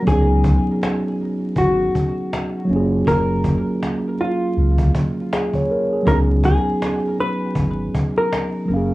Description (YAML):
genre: lo-fi hip hop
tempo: 80 BPM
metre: 4/4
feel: swing 58% on 16ths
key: unclear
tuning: A4 = 440 Hz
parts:
  - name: hollow-body jazz guitar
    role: melody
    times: 0.0-8.9 s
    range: E#4 to B4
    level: -23 LUFS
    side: equal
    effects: low-pass filter, tape echo
  - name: mellow tine electric piano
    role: accompaniment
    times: 0.0-8.9 s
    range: F#3 to E#5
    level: -20 LUFS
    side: equal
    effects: low-pass filter
  - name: sub bass with octave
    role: bass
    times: 0.1-8.9 s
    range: F#1 to C#2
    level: -19 LUFS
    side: equal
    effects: none
  - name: cajon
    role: drums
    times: 0.1-8.8 s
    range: none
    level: -23 LUFS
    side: equal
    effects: none
room: moderate small room ambience, RT60 0.5 s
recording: worn, warbling old tape, cassette tape, vinyl crackle, warbly pitch drift, small room ambience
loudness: -17 LUFS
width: side -18 dB against mid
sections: 0.0-8.9 A section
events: none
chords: 0.1 C#9sus4; 2.7 F#maj9; 6.1 C#9sus4